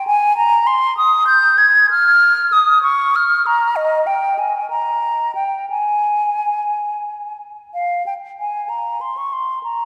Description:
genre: classical, baroque-style fantasia for unaccompanied flute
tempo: 56-68 BPM (dotted quarters)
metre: 6/8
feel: rubato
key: Ab major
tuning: A4 = 440 Hz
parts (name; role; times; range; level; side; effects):
- mellow hollow silver concert flute; solo; 0.0-9.8 s; Eb5 to Ab6; -16 LUFS; equal; none
room: wet church reverb, RT60 3.5 s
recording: recorded in a church or concert hall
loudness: -16 LUFS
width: mono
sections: 0.0-7.8 A section; 7.8-9.8 A section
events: none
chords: none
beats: | 0.09 1.00 | 1.93 2.84 | 3.77 4.72 | 5.71 6.72 | 7.75 8.71 | 9.65

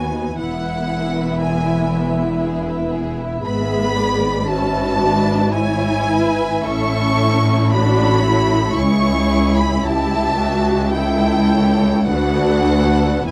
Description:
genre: classical, slow romantic movement for string orchestra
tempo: 48-60 BPM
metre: 3/4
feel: rubato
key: E major, A major from 3.5 s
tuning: A4 = 440 Hz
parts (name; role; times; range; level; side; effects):
- rich chamber violin section; melody; 0.0-13.3 s; F#5 to C#6; -25 LUFS; equal; none
- rich chamber violin section; second line; 0.0-13.3 s; B3 to E5; -28 LUFS; equal; none
- warm chamber viola section; accompaniment; 0.0-13.3 s; B3 to G#4; -24 LUFS; equal; none
- warm chamber cello section; bass; 0.0-13.3 s; C#2 to A2; -24 LUFS; equal; none
- warm chamber double bass section; bass; 0.0-13.3 s; E1 to D#2; -23 LUFS; equal; none
room: light reverb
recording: dark, warm production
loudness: -17 LUFS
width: mono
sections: 0.0-13.3 A section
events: none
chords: 0.4 E; 3.5 E7/G#; 6.7 A; 8.8 C#m7; 9.9 A7/C#; 12.1 D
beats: | 0.36 1.39 2.42 | 3.45 4.50 5.55 | 6.67 7.73 8.78 | 9.86 10.96 12.09 | 13.28

